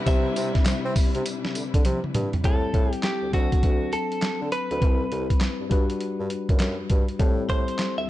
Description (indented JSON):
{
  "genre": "R&B, new jack swing",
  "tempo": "101 BPM",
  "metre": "4/4",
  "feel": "swing 64% on 16ths",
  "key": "A dorian",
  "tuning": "A4 = 440 Hz",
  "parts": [
    { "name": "direct-recorded clean electric guitar", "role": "melody", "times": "0.0-8.1 s", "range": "F#4 to E5", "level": "-30 LUFS", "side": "right 1 dB", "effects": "tape echo" },
    { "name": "tine electric piano", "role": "accompaniment", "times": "0.0-8.1 s", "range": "F#3 to B4", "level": "-30 LUFS", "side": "left 5 dB", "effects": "none" },
    { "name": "warm studio string section", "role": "sustained chords", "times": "0.0-2.4 s", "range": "C3 to B4", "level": "-34 LUFS", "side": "equal", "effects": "none" },
    { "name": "warm bassoon", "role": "bass", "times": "0.1-8.0 s", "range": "C2 to C4", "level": "-29 LUFS", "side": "equal", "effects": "none" },
    { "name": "dusty soul sampler-style drum kit", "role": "drums", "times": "0.1-8.0 s", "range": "handclaps, hi-hat, kick drum, snare drum, tambourine, toms", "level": "-23 LUFS", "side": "equal", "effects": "none" }
  ],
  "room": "little or no reverb",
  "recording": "dark, warm production, nothing above 10.4 kHz",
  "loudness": "-22 LUFS",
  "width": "side -14 dB against mid",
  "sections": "0.0-2.4 A section; 2.4-8.1 B section",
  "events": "drum fill 1.8-2.4",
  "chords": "0.0 Cmaj7; 2.4 Am7; 3.3 D7; 4.8 Cmaj7; 5.7 Gmaj7; 7.2 Am7",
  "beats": "| 0.07 0.66 1.25 1.85 | 2.44 3.04 3.63 4.22 | 4.82 5.41 6.01 6.60 | 7.19 7.79"
}